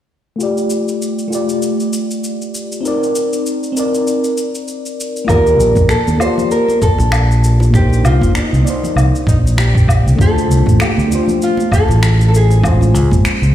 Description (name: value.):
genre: sunset chillout.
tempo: 98 BPM.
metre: 4/4.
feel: swing 57% on 16ths.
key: unclear.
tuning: A4 = 440 Hz.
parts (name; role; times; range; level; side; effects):
mellow FM electric piano; accompaniment; 0.4-13.5 s; Ab3 to D5; -18 LUFS; left 1 dB; chorus, auto-pan, low-pass filter, tape echo.
cabasa, woodblock and finger snaps; drums; 0.4-13.5 s; none; -23 LUFS; left 1 dB; none.
nylon-string guitar; melody; 5.3-13.5 s; Eb4 to C5; -18 LUFS; equal; tape echo.
fingered electric bass; bass; 5.3-13.5 s; G1 to Eb2; -12 LUFS; equal; none.
electronic kick drum; drums; 5.3-13.2 s; none; -14 LUFS; equal; none.
bongos and congas; percussion; 5.5-13.2 s; none; -25 LUFS; right 3 dB; none.
room: moderate lush hall reverb, RT60 1.9 s, studio ambience.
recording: played on a big sound system in a bare room, large studio reverb.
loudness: -11 LUFS.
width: side -12 dB against mid.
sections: 0.4-5.3 A section; 5.3-13.5 B section.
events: filter sweep on FM electric piano 0.4-5.3, 5.3-13.5.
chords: 0.4 Dmadd11/A; 2.8 Cm9; 5.3 Ebmaj9#11; 7.7 Cm9; 10.2 Dm7; 12.6 Dbmaj7.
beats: | 0.39 1.00 1.62 2.23 | 2.84 3.45 4.07 4.68 | 5.29 5.90 6.51 7.13 | 7.74 8.35 8.96 9.58 | 10.19 10.80 11.41 12.03 | 12.64 13.25.